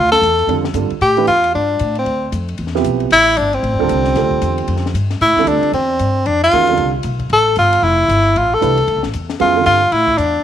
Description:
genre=modal jazz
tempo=229 BPM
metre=4/4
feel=swing 61% on 8ths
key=D dorian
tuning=A4 = 443 Hz
part: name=clear tenor saxophone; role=melody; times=0.0-10.4 s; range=C4 to A4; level=-13 LUFS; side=left 1 dB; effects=slapback echo
part: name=upright bass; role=bass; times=0.0-10.4 s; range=D1 to A2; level=-20 LUFS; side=left 1 dB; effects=none
part: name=compact cocktail drum kit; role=drums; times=0.1-10.3 s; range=hi-hat, kick drum, ride cymbal, snare drum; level=-31 LUFS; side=left 7 dB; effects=none
part: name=warm upright piano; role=accompaniment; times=0.5-9.8 s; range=C3 to B4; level=-20 LUFS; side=right 11 dB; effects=none
room=light reverb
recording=1960s-style stereo with parts hard left and right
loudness=-12 LUFS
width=side -10 dB against mid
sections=0.0-10.4 A section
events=none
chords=0.0 Dm11

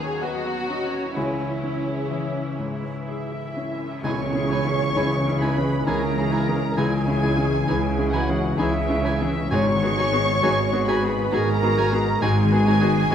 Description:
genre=cinematic, emotional film score for orchestra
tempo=61-68 BPM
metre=3/4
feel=rubato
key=unclear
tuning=A4 = 440 Hz
part: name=muted symphonic violin section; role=melody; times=0.0-13.1 s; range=C#5 to C#6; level=-30 LUFS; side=left 1 dB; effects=none
part: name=muted studio violin section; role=second line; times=0.0-13.1 s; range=C#4 to G#4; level=-33 LUFS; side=equal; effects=none
part: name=bright baby grand piano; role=accompaniment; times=0.0-13.1 s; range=C#2 to B4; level=-28 LUFS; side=left 1 dB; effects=none
part: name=muted symphonic viola section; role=accompaniment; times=0.0-13.1 s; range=E3 to F#5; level=-34 LUFS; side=right 1 dB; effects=none
part: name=concert harp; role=arpeggios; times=0.0-13.1 s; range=G#2 to B5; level=-29 LUFS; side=left 5 dB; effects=none
part: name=muted symphonic cello section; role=bass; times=0.0-13.1 s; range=G#2 to E4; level=-28 LUFS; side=right 4 dB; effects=none
part: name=flute section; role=second line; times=1.2-13.1 s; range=E4 to G#5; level=-28 LUFS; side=equal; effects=none
part: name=warm clarinet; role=second line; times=1.2-13.1 s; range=E4 to F#4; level=-32 LUFS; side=equal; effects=none
part: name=cymbal swell and tam-tam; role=percussion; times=1.2-7.6 s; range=none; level=-36 LUFS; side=left 1 dB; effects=none
part: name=bright oboe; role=second line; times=4.0-13.1 s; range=G#5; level=-33 LUFS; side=right 3 dB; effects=none
part: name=mellow French horn section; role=sustained chords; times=4.0-13.1 s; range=E3 to F#4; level=-29 LUFS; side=left 4 dB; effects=none
part: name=muted symphonic double bass section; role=bass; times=4.0-13.1 s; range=G#1 to C#2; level=-28 LUFS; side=right 3 dB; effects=none
part: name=timpani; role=percussion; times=9.5-10.8 s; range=G#2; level=-30 LUFS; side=left 1 dB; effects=none
room=moderate scoring stage reverb, RT60 1.9 s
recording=none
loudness=-20 LUFS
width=side -9 dB against mid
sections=0.0-4.0 A section; 4.0-13.1 B section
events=band accent 4.0-5.0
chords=0.0 Badd9/D#; 1.2 C#m; 9.5 G#m7

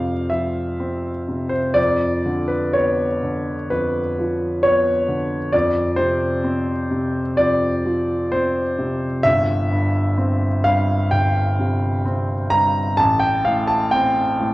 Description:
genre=classical, romantic character piece for solo piano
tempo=64 BPM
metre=4/4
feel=uneven beats, rubato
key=F major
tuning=A4 = 440 Hz
part: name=clear grand piano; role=solo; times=0.0-14.5 s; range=G1 to Bb5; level=-17 LUFS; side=equal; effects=none
room=wet recital hall reverb, RT60 1.4 s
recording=worn, warbling old tape, cassette tape, warbly pitch drift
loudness=-17 LUFS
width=side -18 dB against mid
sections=0.0-14.5 A section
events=none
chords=0.0 F5; 1.8 Db7b9/F; 5.5 F5; 9.2 C/G; 13.0 F/A

